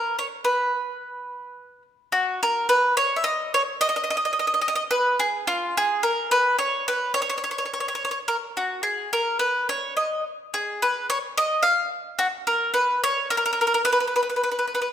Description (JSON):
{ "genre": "italian folk", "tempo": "107 BPM", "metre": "3/4", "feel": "straight", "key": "B major", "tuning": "A4 = 439 Hz", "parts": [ { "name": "bowl-back mandolin", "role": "solo", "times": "0.0-14.9 s", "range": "E#4 to E#5", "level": "-21 LUFS", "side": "equal", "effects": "none" } ], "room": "moderate recital hall reverb, RT60 1.5 s", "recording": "minimal, uncompressed stereo recording", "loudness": "-21 LUFS", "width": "side -9 dB against mid", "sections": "0.0-2.1 A section; 2.1-14.9 B section", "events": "none", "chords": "none", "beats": "| 0.43 0.99 1.55 | 2.12 2.69 3.25 | 3.80 4.36 4.92 | 5.47 6.03 6.58 | 7.14 7.69 8.25 | 8.82 9.38 9.94 | 10.51 11.06 11.62 | 12.17 12.73 13.28 | 13.84 14.40" }